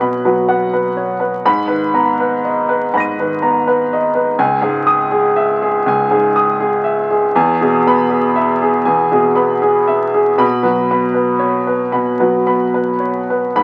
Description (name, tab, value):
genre	neoclassical minimalist piano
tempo	80 BPM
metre	4/4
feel	rubato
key	unclear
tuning	A4 = 440 Hz
part	clear upright piano	solo	0.0-13.6 s	C#2 to D#7	-15 LUFS	equal	none
room	moderate club reverb, RT60 0.7 s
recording	very old 78 rpm record, vinyl crackle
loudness	-15 LUFS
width	mono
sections	0.0-13.6 A section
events	none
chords	0.0 Bsus2; 1.5 G#madd9; 4.4 C#madd9; 7.4 E; 10.4 Bsus2